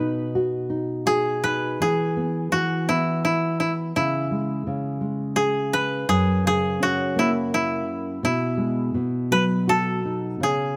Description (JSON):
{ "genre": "children's music, lullaby", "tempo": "84 BPM", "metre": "3/4", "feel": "rubato", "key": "E major", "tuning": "A4 = 440 Hz", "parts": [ { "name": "koto", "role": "melody", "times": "0.0-10.8 s", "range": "E4 to B4", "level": "-26 LUFS", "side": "equal", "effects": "none" }, { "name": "nylon-string guitar", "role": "accompaniment", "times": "0.0-10.8 s", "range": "F#2 to F#4", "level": "-27 LUFS", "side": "equal", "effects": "none" } ], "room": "light reverb", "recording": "close, detailed microphones", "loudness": "-23 LUFS", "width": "mono", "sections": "0.0-1.8 A section; 1.8-10.8 B section", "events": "none", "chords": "0.0 B; 1.8 E; 4.0 C#m; 6.1 F#7; 8.2 E/B; 8.9 B", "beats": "0.34 1.07 | 1.81 2.54 3.25 | 3.96 4.66 5.37 | 6.08 6.79 7.50 | 8.22 8.94 9.68 | 10.42" }